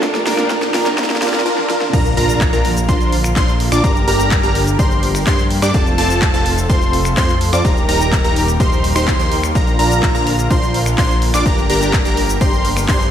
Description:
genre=EDM, festival progressive house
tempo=126 BPM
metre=4/4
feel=straight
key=Bb major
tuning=A4 = 440 Hz
part: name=direct-recorded clean electric guitar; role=accompaniment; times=0.0-1.4 s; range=Bb2 to Bb4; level=-24 LUFS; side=right 2 dB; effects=spring reverb, sidechain pumping, ping-pong delay
part: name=lush unison pad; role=sustained chords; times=0.0-13.1 s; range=C3 to Bb4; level=-23 LUFS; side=equal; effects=chorus, sidechain pumping
part: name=supersaw stab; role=riff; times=0.0-13.1 s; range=C4 to D5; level=-20 LUFS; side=equal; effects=sidechain pumping, ping-pong delay
part: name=big-room dance drum kit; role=drums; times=0.0-13.1 s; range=crash cymbal, finger snaps, handclaps, hi-hat, shaker, snare drum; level=-23 LUFS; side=equal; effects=overdrive, studio reverb
part: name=electronic kick drum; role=drums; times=0.0-13.0 s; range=none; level=-17 LUFS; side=equal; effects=overdrive, high-pass filter on kick, studio reverb, high-pass filter on room
part: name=riser and impact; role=sound effects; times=0.0-3.8 s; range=none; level=-27 LUFS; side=equal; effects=none
part: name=plucky unison lead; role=arpeggios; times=1.9-13.1 s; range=A5 to D6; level=-21 LUFS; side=equal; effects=sidechain pumping, ping-pong delay
part: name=fat analog bass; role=bass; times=1.9-13.1 s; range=Eb1 to G2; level=-20 LUFS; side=equal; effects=sidechain pumping
room=moderate lush hall reverb, RT60 2.2 s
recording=dreamy mix soaked in reverb, high-pass filter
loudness=-13 LUFS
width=side -10 dB against mid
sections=0.0-1.9 A section; 1.9-13.1 B section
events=build-up 0.0-1.9; drum fill 0.0-1.5, 1.6-1.9; drop 1.9-13.1; impact 1.9-3.8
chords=0.0 Eb; 1.9 Bb; 3.8 Gm; 5.7 F; 7.6 Eb; 9.6 Bb; 11.5 Gm

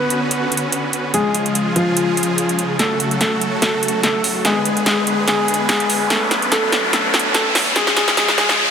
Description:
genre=heavy wobble dubstep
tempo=145 BPM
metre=4/4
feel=swing 54% on 16ths, half-time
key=unclear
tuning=A4 = 440 Hz
part: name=dark grand piano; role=melody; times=0.0-8.6 s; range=E#3 to B4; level=-20 LUFS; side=left 1 dB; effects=tape echo
part: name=supersaw chords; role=sustained chords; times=0.0-8.7 s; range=C#3 to B4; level=-21 LUFS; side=equal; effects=none
part: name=big-room dance drum kit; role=drums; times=0.1-8.6 s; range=hi-hat, snare drum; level=-18 LUFS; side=right 1 dB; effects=high-pass filter on hats, high-pass filter on snare
part: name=riser and reverse cymbal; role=sound effects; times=4.4-8.7 s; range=none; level=-21 LUFS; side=left 1 dB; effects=none
room=moderate lush hall reverb, RT60 2.5 s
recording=dense, heavily limited modern master, high-pass filter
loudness=-15 LUFS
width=side -7 dB against mid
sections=0.0-8.7 A section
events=build-up 0.0-8.7; filter sweep on grand piano 0.0-8.7; filter sweep 0.0-8.7; drum fill 2.8-8.6; riser 4.4-8.7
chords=0.0 Bmadd9; 1.1 C#; 2.8 F#m; 4.4 G#dim; 6.1 Bmadd9; 7.8 C#

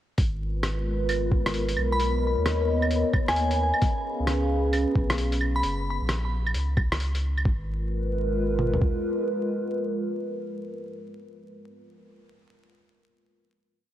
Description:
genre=future garage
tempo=132 BPM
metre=4/4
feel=swing 64% on 16ths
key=G# dorian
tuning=A4 = 440 Hz
part: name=dark analog pad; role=sustained chords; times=0.2-11.8 s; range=G#3 to E#5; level=-28 LUFS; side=equal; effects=chorus, phaser, sidechain pumping
part: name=warm sub bass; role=bass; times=0.2-8.8 s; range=F#1 to D#2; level=-27 LUFS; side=equal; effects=sidechain pumping
part: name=lo-fi sampler-style drum kit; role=drums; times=0.2-9.0 s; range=kick drum, toms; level=-24 LUFS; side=equal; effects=overdrive, vintage 12-bit sampler grit
part: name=lo-fi sampler-style drum kit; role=drums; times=0.2-7.4 s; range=claves, hi-hat, rim click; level=-30 LUFS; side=equal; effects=vintage 12-bit sampler grit
part: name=wind-like tuned noise texture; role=texture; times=0.8-5.7 s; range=B3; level=-37 LUFS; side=left 3 dB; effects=built-in reverb
part: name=glassy synth bell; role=melody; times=1.9-5.6 s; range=G#5 to B5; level=-30 LUFS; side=equal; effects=chorus, ping-pong delay
room=wet lush hall reverb, RT60 2.2 s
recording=dreamy mix soaked in reverb, vinyl crackle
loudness=-23 LUFS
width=side -12 dB against mid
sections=0.2-7.5 groove; 7.5-11.1 final chord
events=none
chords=0.2 G#m69; 2.0 Bmaj9; 3.8 C#7; 5.6 F#; 7.5 G#m69

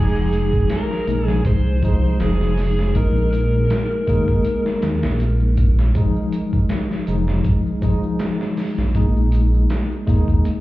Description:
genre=trip hop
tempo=80 BPM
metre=4/4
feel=swing 55% on 16ths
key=F minor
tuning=A4 = 440 Hz
part: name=overdriven slide guitar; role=melody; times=0.0-4.8 s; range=Ab4 to C5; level=-25 LUFS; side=equal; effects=dub echo
part: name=tine electric piano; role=accompaniment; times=0.0-10.6 s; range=F3 to Eb4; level=-23 LUFS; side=left 2 dB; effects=medium stereo tremolo, low-pass filter, tape echo
part: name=dark detuned saw bass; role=bass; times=0.0-10.4 s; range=F1 to Eb2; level=-18 LUFS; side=equal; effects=none
part: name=maracas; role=percussion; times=0.2-10.6 s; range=none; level=-56 LUFS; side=right 3 dB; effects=none
part: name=trip hop sampler-style drum kit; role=drums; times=0.3-10.6 s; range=hi-hat, kick drum, snare drum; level=-22 LUFS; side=equal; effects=none
room=light reverb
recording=heard muffled through a wall, club reverb, EQ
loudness=-16 LUFS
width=side -17 dB against mid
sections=0.0-10.6 A section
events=filter sweep on tine electric piano 0.0-10.6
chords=0.0 Fm7; 3.0 Bb7sus4; 6.0 Fm7; 9.0 Bb7sus4

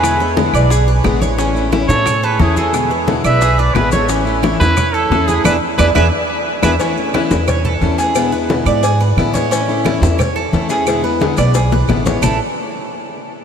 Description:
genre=latin, Cuban son and guajira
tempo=177 BPM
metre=4/4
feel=straight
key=A major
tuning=A4 = 441 Hz
part: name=warm trumpet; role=melody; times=0.0-6.7 s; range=G#4 to E5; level=-20 LUFS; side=equal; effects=ping-pong delay
part: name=breathy bright silver concert flute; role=second line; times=0.0-6.7 s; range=E4 to B4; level=-25 LUFS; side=right 8 dB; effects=none
part: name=picked plugged-in steel-string acoustic guitar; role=accompaniment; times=0.0-12.4 s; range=A2 to E4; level=-20 LUFS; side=left 5 dB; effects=none
part: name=Cuban tres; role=arpeggios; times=0.0-12.4 s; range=A3 to E5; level=-19 LUFS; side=right 4 dB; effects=none
part: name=upright bass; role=bass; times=0.0-12.4 s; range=A1 to A2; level=-17 LUFS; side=right 1 dB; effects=none
part: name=bongos and cowbell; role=percussion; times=0.0-12.3 s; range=none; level=-24 LUFS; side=left 7 dB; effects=none
part: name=claves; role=percussion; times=0.0-12.3 s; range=none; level=-29 LUFS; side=right 12 dB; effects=none
part: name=congas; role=percussion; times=0.0-12.3 s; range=none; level=-22 LUFS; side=left 1 dB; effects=none
part: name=maracas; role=percussion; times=0.0-12.3 s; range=none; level=-31 LUFS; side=left 11 dB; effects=none
room=wet huge ambient reverb, RT60 6.5 s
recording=dreamy mix soaked in reverb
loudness=-12 LUFS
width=side -7 dB against mid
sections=0.0-6.8 A section; 6.8-12.2 B section; 12.2-13.4 C section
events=band accent 5.4-6.8; drum fill 5.8-6.8, 11.4-12.2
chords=0.0 E7; 1.4 A; 2.7 E7; 4.1 A; 5.4 E7; 6.8 A; 8.2 E7; 9.5 A; 10.9 E7; 12.2 A5

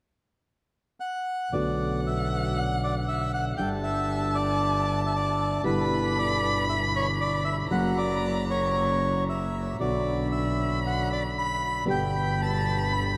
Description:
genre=tango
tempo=116 BPM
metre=4/4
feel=rubato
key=B minor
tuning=A4 = 438 Hz
part: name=bandoneon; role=melody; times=1.0-13.0 s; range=B4 to B5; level=-31 LUFS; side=equal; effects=none
part: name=dark violin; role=second line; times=1.5-13.2 s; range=F#5 to B5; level=-35 LUFS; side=equal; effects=none
part: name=nylon-string guitar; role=accompaniment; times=1.5-13.2 s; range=B2 to G4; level=-32 LUFS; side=equal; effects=none
part: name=clear double bass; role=bass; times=1.5-13.2 s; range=F#1 to B1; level=-32 LUFS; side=equal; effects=none
room=wet huge ambient reverb, RT60 9.3 s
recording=in a vast, echoing space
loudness=-27 LUFS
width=mono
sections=0.0-1.5 A section; 1.5-13.2 B section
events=none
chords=0.0 N.C.; 1.5 Bm7; 3.6 Gsus2; 5.6 Em7/G; 7.7 F#; 9.8 Bm; 11.9 G

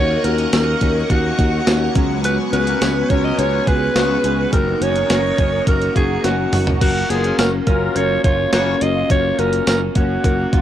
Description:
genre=1980s-style pop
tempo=105 BPM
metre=4/4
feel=straight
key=F# major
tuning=A4 = 440 Hz
part: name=raspy alto saxophone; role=melody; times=0.0-10.6 s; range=F#4 to D#5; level=-21 LUFS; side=right 1 dB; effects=cassette tape, plate reverb
part: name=FM electric piano with soft pad layer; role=accompaniment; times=0.0-10.6 s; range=G#3 to A#4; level=-24 LUFS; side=left 8 dB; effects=chorus, cassette tape, plate reverb
part: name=overdriven electric guitar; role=accompaniment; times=0.0-10.6 s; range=C#3 to F#4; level=-30 LUFS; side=left 7 dB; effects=analog chorus, cassette tape, plate reverb
part: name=phased string machine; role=sustained chords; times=0.0-6.8 s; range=B3 to C#6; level=-26 LUFS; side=equal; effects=ensemble chorus, phaser, cassette tape, plate reverb
part: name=direct-recorded clean electric guitar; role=riff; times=0.0-10.6 s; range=D#3 to G#4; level=-26 LUFS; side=right 9 dB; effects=ensemble chorus, cassette tape, analog delay
part: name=sustaining fretless electric bass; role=bass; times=0.0-10.6 s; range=F#1 to D#2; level=-22 LUFS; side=equal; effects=none
part: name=clean 12-bit digital drum machine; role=drums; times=0.2-10.6 s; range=crash cymbal, hi-hat, kick drum, snare drum, tambourine, toms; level=-18 LUFS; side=equal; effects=cassette tape
part: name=warm horn section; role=stabs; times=2.5-8.8 s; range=C#3 to C#5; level=-26 LUFS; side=left 7 dB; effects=cassette tape, plate reverb
room=moderate booth ambience, RT60 0.3 s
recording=home recording on cassette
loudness=-15 LUFS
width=side -11 dB against mid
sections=0.0-6.8 A section; 6.8-10.6 A section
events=drum fill 6.2-6.8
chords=0.0 D#m7; 2.0 C#7sus4; 4.5 F#6; 6.8 F#maj7

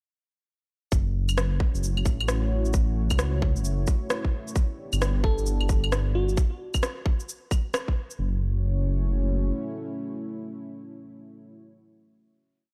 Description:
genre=future garage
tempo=132 BPM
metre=4/4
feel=swing 63% on 16ths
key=F# phrygian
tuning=A4 = 440 Hz
part: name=dark analog pad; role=sustained chords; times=1.6-11.5 s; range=A3 to D5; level=-37 LUFS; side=equal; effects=chorus, sidechain pumping
part: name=dark detuned saw bass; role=bass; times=0.9-9.5 s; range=F#1 to C#2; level=-27 LUFS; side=equal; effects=sidechain pumping
part: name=electronic kick drum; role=drums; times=0.9-8.0 s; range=none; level=-27 LUFS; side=equal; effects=overdrive, studio reverb
part: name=electronic shaker, claves and rim click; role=drums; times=0.9-8.2 s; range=none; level=-33 LUFS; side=equal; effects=overdrive, studio reverb
part: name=bell-like FM electric piano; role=melody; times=5.2-6.4 s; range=F#4 to A4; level=-35 LUFS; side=equal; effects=chorus, dub echo
room=little or no reverb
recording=dark, warm production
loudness=-26 LUFS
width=mono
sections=0.9-8.2 groove; 8.2-11.8 final chord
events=none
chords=0.9 F#m7; 4.6 G6; 8.2 F#m7

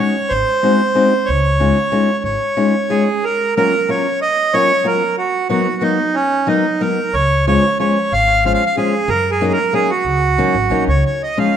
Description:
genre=musette waltz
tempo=185 BPM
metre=3/4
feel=rubato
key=Db major, F# major from 3.2 s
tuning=A4 = 440 Hz
part: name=accordion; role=melody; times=0.0-11.6 s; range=C#4 to E#5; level=-16 LUFS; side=right 2 dB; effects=none
part: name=fingerpicked steel-string acoustic guitar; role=accompaniment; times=0.0-11.5 s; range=E#3 to Gb4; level=-18 LUFS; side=left 3 dB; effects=none
part: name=upright bass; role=bass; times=0.3-2.4, 7.1-11.0 s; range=Ab1 to F#2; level=-19 LUFS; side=equal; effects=none
room=moderate scoring stage reverb, RT60 1.8 s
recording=minimal, uncompressed stereo recording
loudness=-13 LUFS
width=side -9 dB against mid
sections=0.0-3.2 A section; 3.2-11.0 B section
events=none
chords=0.3 Ab7; 1.3 Dbadd9; 3.2 F#maj7; 5.2 Bmaj7; 7.1 C#; 9.1 F#6; 11.0 Dbadd9

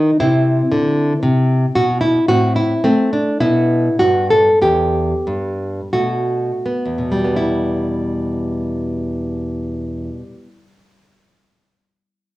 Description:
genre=classical, baroque-style dance for nylon-string guitar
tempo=40-60 BPM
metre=3/4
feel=rubato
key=E minor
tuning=A4 = 438 Hz
part: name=nylon-string guitar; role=solo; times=0.0-10.6 s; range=E2 to A4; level=-15 LUFS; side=equal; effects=cassette tape
room=light reverb, small room ambience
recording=home recording on cassette, small room reverb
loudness=-15 LUFS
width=side -17 dB against mid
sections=0.0-7.4 A section; 7.4-11.5 B section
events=slowing down 0.0-7.4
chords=0.2 C; 2.3 Amadd11; 3.4 Em

